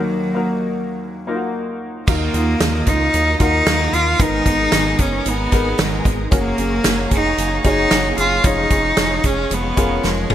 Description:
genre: piano-driven pop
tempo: 113 BPM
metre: 4/4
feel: straight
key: unclear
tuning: A4 = 439 Hz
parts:
  - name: warm cello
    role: melody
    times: 0.0-10.3 s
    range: Gb3 to F4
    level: -19 LUFS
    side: equal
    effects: none
  - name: warm grand piano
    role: accompaniment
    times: 0.0-10.3 s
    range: Eb2 to Db5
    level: -24 LUFS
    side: left 3 dB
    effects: analog chorus
  - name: rich symphonic string section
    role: sustained chords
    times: 2.1-10.3 s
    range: Cb4 to Eb6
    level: -31 LUFS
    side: left 3 dB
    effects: none
  - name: picked steel-string acoustic guitar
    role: riff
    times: 2.1-10.3 s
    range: Ab2 to Bb4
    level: -25 LUFS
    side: right 5 dB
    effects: ensemble chorus
  - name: round analog bass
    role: bass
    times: 2.1-10.3 s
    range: F1 to Eb2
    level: -23 LUFS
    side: equal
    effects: none
  - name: natural country drum kit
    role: drums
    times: 2.1-10.3 s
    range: crash cymbal, hi-hat, kick drum, snare drum, toms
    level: -19 LUFS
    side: equal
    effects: gated reverb
room: light reverb, small room ambience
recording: bright 1980s-style digital production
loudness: -15 LUFS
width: side -11 dB against mid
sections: 0.0-2.1 A section; 2.1-10.3 B section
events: drum fill 10.0-10.3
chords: 0.0 Ebm; 2.1 Ebmadd9; 4.2 Abmadd9; 6.3 Gbadd9; 8.4 Db/F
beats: 0.48 1.01 1.54 | 2.07 2.60 3.14 3.67 | 4.20 4.73 5.26 5.79 | 6.32 6.85 7.38 7.92 | 8.45 8.98 9.51 10.04

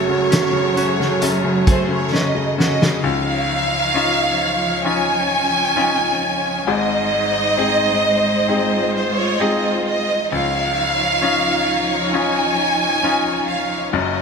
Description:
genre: pop ballad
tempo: 66 BPM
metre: 4/4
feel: straight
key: Db major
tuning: A4 = 441 Hz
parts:
  - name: warm symphonic violin section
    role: melody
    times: 0.0-14.2 s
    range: C5 to Ab5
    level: -19 LUFS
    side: right 2 dB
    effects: none
  - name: dark French horn section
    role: second line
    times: 0.0-2.5 s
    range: Gb3 to Gb4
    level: -22 LUFS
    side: right 7 dB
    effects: none
  - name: bright grand piano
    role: accompaniment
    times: 0.0-14.2 s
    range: Gb1 to Ab4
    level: -22 LUFS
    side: left 4 dB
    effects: none
  - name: warm studio string section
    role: sustained chords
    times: 0.0-14.2 s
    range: F3 to Db5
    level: -23 LUFS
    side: equal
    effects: none
  - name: direct-recorded clean electric guitar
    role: arpeggios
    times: 0.0-3.6 s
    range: Gb3 to Ab4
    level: -28 LUFS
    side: left 4 dB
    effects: lush chorus
  - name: loose indie drum kit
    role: drums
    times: 0.3-3.0 s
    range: hi-hat, kick drum, snare drum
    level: -19 LUFS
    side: right 1 dB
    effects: gated reverb
room: moderate lush hall reverb, RT60 2.8 s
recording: bright 1980s-style digital production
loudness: -16 LUFS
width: side -5 dB against mid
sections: 0.0-3.0 A section; 3.0-14.2 A section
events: drum fill 2.1-3.0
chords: 0.0 Gbmadd9; 3.0 Dbadd9; 6.7 Ab; 10.3 Dbadd9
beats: 0.30 1.21 2.12 | 3.03 3.94 4.85 5.76 | 6.67 7.58 8.48 9.39 | 10.30 11.21 12.12 13.03 | 13.94

